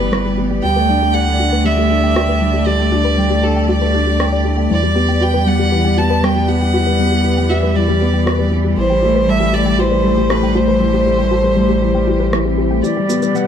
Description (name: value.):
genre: piano and strings electronica.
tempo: 118 BPM.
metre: 4/4.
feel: straight.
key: unclear.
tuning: A4 = 440 Hz.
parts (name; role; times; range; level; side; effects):
clear violin; melody; 0.0-13.5 s; A4 to A5; -19 LUFS; right 2 dB; low-pass filter.
rich string quartet; sustained chords; 0.0-13.5 s; D3 to D5; -24 LUFS; right 1 dB; none.
soft round pluck; arpeggios; 0.0-13.4 s; G3 to G5; -22 LUFS; left 2 dB; chorus, ping-pong delay.
dark grand piano; riff; 0.0-13.5 s; E3 to G5; -17 LUFS; left 2 dB; low-pass filter, ping-pong delay.
warm sub bass; bass; 0.0-12.8 s; G1 to E2; -18 LUFS; right 1 dB; tube saturation.
electronic rim click and shaker; drums; 0.1-13.5 s; none; -21 LUFS; right 1 dB; high-pass filter on snare, high-pass filter on perc, high-pass filter on room.
riser; sound effects; 13.0-13.5 s; none; -31 LUFS; right 3 dB; none.
room: light reverb, digital ambience.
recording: none.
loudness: -12 LUFS.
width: side -8 dB against mid.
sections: 0.0-12.8 A section.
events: riser 13.0-13.5.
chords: 0.0 G6; 0.6 Dsus4; 4.7 Em7; 8.8 Am7; 12.8 G6.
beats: 0.13 | 0.64 1.15 1.66 2.17 | 2.68 3.18 3.69 4.20 | 4.71 5.22 5.73 6.24 | 6.74 7.25 7.76 8.27 | 8.78 9.29 9.79 10.30 | 10.81 11.32 11.83 12.34 | 12.85 13.35.